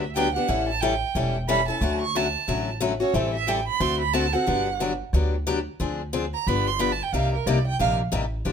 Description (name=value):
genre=acoustic string swing (jazz manouche)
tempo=181 BPM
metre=4/4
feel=swing 61% on 8ths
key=D major, G major from 4.5 s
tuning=A4 = 440 Hz
part: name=warm violin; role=second line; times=0.0-7.9 s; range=Bb4 to C#6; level=-26 LUFS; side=right 8 dB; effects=none
part: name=picked steel-string acoustic guitar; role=accompaniment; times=0.0-8.5 s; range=C3 to A4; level=-26 LUFS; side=left 5 dB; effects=none
part: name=upright bass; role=bass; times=0.0-8.5 s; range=E1 to D2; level=-27 LUFS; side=equal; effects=none
room=light reverb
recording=minimal, uncompressed stereo recording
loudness=-22 LUFS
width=side -7 dB against mid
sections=0.0-4.5 A section; 4.5-8.5 A section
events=violin solo 0.0-8.5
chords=0.5 A7; 1.8 Dmaj7; 3.1 Am7; 3.8 D7; 4.5 Gmaj7; 5.8 Dm7b5; 6.5 G7; 7.1 Cm7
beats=0.16 | 0.49 0.82 1.15 1.49 | 1.82 2.15 2.48 2.82 | 3.15 3.48 3.81 4.14 | 4.48 4.81 5.14 5.47 | 5.81 6.14 6.47 6.80 | 7.13 7.47 7.80 8.13 | 8.46